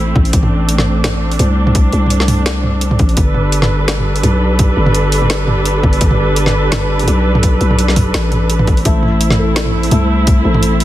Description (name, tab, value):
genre	half-time drum and bass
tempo	169 BPM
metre	4/4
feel	swing 55% on 16ths, half-time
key	A minor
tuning	A4 = 440 Hz
part	dark studio string section	sustained chords	0.0-10.8 s	G3 to B4	-18 LUFS	right 2 dB	sidechain pumping
part	growling 808-style bass	bass	0.0-10.8 s	G1 to C2	-14 LUFS	equal	none
part	drum and bass drum kit	drums	0.2-10.8 s	hi-hat, snare drum, toms	-17 LUFS	equal	overdrive
part	electronic kick drum	drums	0.2-10.4 s	none	-13 LUFS	equal	none
part	felt-muted upright piano	arpeggios	8.9-10.8 s	A3 to A4	-18 LUFS	left 4 dB	digital delay
room	digital ambience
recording	dense, heavily limited modern master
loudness	-11 LUFS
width	side -14 dB against mid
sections	0.0-10.8 A section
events	none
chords	0.0 Am; 3.2 G; 8.9 Am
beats	| 0.33 0.69 1.04 1.40 | 1.75 2.11 2.46 2.82 | 3.17 3.53 3.88 4.24 | 4.59 4.95 5.30 5.66 | 6.01 6.37 6.72 7.08 | 7.43 7.79 8.14 8.50 | 8.85 9.21 9.56 9.92 | 10.27 10.63